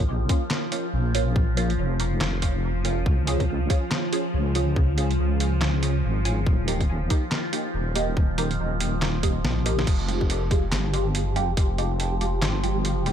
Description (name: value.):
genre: deep dubstep.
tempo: 141 BPM.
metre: 4/4.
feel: swing 60% on 16ths, half-time.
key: F minor.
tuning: A4 = 440 Hz.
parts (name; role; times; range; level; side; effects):
overtone-sweeping drone; sustained chords; 0.0-13.1 s; F3; -30 LUFS; equal; chorus, built-in reverb.
deep soft wobble bass; bass; 0.0-13.1 s; Eb1 to Db2; -25 LUFS; equal; chorus.
electronic kick drum; drums; 0.0-11.7 s; none; -22 LUFS; equal; overdrive, studio reverb.
trip hop sampler-style drum kit; drums; 0.0-13.1 s; crash cymbal, handclaps, hi-hat, snare drum; -30 LUFS; right 1 dB; studio reverb.
filtered dub chord stab; stabs; 0.3-13.1 s; Ab3 to Ab4; -30 LUFS; right 2 dB; phaser, analog chorus, dub echo.
flickering grainy texture; texture; 10.7-13.1 s; G4; -34 LUFS; right 2 dB; built-in reverb.
room: little or no reverb.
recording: dark, warm production.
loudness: -22 LUFS.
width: side -9 dB against mid.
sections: 0.0-9.9 A section; 9.9-13.1 A section.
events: drop 0.0-9.9, 9.9-13.1; drum fill 9.4-9.9.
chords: 0.0 Bbm; 3.1 Db; 6.5 Eb; 9.9 Fmadd9.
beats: 0.08 0.51 0.93 | 1.36 1.78 2.21 2.64 | 3.06 3.49 3.91 4.34 | 4.76 5.19 5.62 6.04 | 6.47 6.89 7.32 7.74 | 8.17 8.59 9.02 9.44 | 9.87 10.29 10.72 11.15 | 11.57 12.00 12.42 12.85.